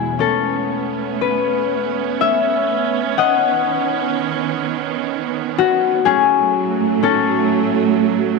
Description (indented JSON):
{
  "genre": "celtic folk, Celtic slow air",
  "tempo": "58-63 BPM",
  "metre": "3/4",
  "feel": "rubato",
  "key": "unclear",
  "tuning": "A4 = 442 Hz",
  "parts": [
    { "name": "concert harp", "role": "accompaniment", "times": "0.0-8.4 s", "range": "E2 to F#5", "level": "-17 LUFS", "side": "left 12 dB", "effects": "none" },
    { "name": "clear studio string section", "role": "sustained chords", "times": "0.0-8.4 s", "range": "A2 to E4", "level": "-20 LUFS", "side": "right 15 dB", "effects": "none" }
  ],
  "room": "moderate plate reverb, RT60 2.8 s",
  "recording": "1960s-style stereo with parts hard left and right",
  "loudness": "-15 LUFS",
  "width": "side -2 dB against mid",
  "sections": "0.2-8.4 A section",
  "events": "harp solo 0.2-8.4",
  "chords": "0.2 Aadd9; 3.2 Badd9; 6.1 F#madd9/A",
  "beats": "| 0.17 1.19 2.20 | 3.18 4.14 5.11 | 6.07 7.02 7.99"
}